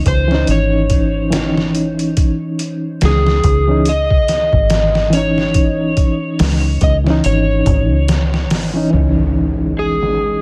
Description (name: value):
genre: trip hop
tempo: 71 BPM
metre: 4/4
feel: swing 58% on 16ths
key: C# minor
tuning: A4 = 440 Hz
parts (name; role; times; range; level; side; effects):
- overdriven slide guitar; melody; 0.0-10.4 s; G#4 to D#5; -22 LUFS; equal; vintage 12-bit sampler grit, dub echo
- reed electric piano; accompaniment; 0.0-10.4 s; E3 to D#4; -20 LUFS; equal; tremolo, tape echo
- deep dub fingered electric bass; bass; 0.0-10.4 s; G#1 to C#2; -19 LUFS; equal; none
- trip hop sampler-style drum kit; drums; 0.1-10.4 s; hi-hat, kick drum, snare drum; -19 LUFS; equal; low-pass filter on hats, low-pass filter on snare, low-pass filter on kick
- impact; sound effects; 8.9-10.4 s; none; -25 LUFS; equal; none
- bowed-like drone; texture; 9.3-10.4 s; G#3; -31 LUFS; equal; built-in reverb
room: digital ambience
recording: none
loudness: -15 LUFS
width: mono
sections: 0.0-8.9 A section; 8.9-10.4 B section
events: impact 8.9-10.4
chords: 0.0 C#madd9